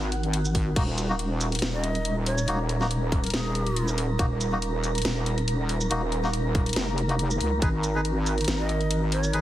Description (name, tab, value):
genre	deep dubstep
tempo	140 BPM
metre	4/4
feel	swing 53% on 16ths, half-time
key	Eb minor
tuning	A4 = 443 Hz
part	dark analog pad	sustained chords	0.0-9.4 s	Eb4 to Bb4	-36 LUFS	equal	chorus
part	wobble bass	bass	0.0-9.4 s	Eb1 to Db2	-26 LUFS	equal	chorus
part	wind-like tuned noise texture	texture	0.0-9.4 s	Gb4 to Bb5	-34 LUFS	right 3 dB	built-in reverb
part	garage drum kit	drums	0.1-9.4 s	crash cymbal, hi-hat, shaker, snare drum	-31 LUFS	equal	studio reverb
part	electronic kick drum	drums	0.5-7.7 s	none	-25 LUFS	equal	studio reverb
part	melodica	stabs	0.8-9.4 s	Bb3 to Cb5	-33 LUFS	left 1 dB	dub echo
part	breathy bright low ney	melody	1.7-3.9, 8.6-9.4 s	Ab4 to Eb5	-34 LUFS	equal	dub echo
room	light reverb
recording	heavily compressed radio sound, multiband compression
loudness	-23 LUFS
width	side -13 dB against mid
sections	0.0-9.4 A section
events	none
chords	0.0 Ab5; 0.8 Eb5; 7.6 Ab5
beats	0.34 | 0.76 1.19 1.62 2.05 | 2.48 2.91 3.33 3.76 | 4.19 4.62 5.05 5.48 | 5.91 6.33 6.76 7.19 | 7.62 8.05 8.48 8.91 | 9.34